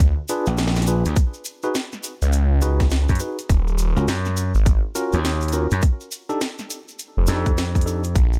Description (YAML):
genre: glitch hop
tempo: 103 BPM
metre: 4/4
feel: swing 62% on 16ths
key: unclear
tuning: A4 = 440 Hz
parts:
  - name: phased detuned saw bass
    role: bass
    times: 0.0-8.4 s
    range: Eb1 to D2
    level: -21 LUFS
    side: equal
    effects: phaser
  - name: drum and bass drum kit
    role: drums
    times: 0.0-8.3 s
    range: hi-hat, snare drum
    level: -30 LUFS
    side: equal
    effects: overdrive
  - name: electronic kick drum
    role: drums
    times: 0.0-8.3 s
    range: none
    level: -20 LUFS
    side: equal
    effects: overdrive
  - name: bright tine electric piano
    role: stabs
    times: 0.3-8.0 s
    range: Db4 to Cb5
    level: -30 LUFS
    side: equal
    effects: sidechain pumping, delay
  - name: tube shaker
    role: percussion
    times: 0.3-8.4 s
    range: none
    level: -37 LUFS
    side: equal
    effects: none
  - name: gritty slap bass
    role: bass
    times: 0.5-8.1 s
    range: Bb1 to Gb2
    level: -23 LUFS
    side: equal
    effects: overdrive
room: digital ambience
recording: none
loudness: -21 LUFS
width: mono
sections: 0.0-8.4 A section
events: none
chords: 0.0 Bb7b9; 1.2 Db7sus4; 3.5 Ebm7; 5.8 F13